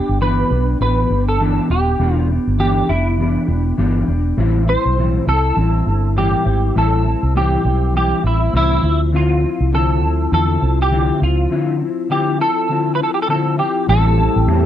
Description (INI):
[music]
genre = indie pop, bedroom pop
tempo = 101 BPM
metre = 4/4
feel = swing 60% on 16ths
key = A minor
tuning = A4 = 442 Hz
[part]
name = semi-hollow electric guitar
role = melody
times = 0.0-14.7 s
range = E4 to C5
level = -20 LUFS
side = right 1 dB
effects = ensemble chorus, slapback echo
[part]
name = mellow electric guitar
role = accompaniment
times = 0.0-14.7 s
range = A2 to G4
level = -19 LUFS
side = left 3 dB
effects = ensemble chorus, warbly pitch drift
[part]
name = vintage muted fingered electric bass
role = bass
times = 0.1-14.7 s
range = D#1 to E2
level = -17 LUFS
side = right 1 dB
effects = none
[part]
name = phased analog pad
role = sustained chords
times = 13.9-14.7 s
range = A3 to G4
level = -23 LUFS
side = right 5 dB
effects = phaser, chorus
[sound]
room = little or no reverb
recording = dry, close 1970s-style studio recording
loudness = -14 LUFS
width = side -11 dB against mid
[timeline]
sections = 0.0-13.9 A section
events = none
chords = 0.0 Em7; 4.4 Am7; 8.8 Dm9; 13.9 Am7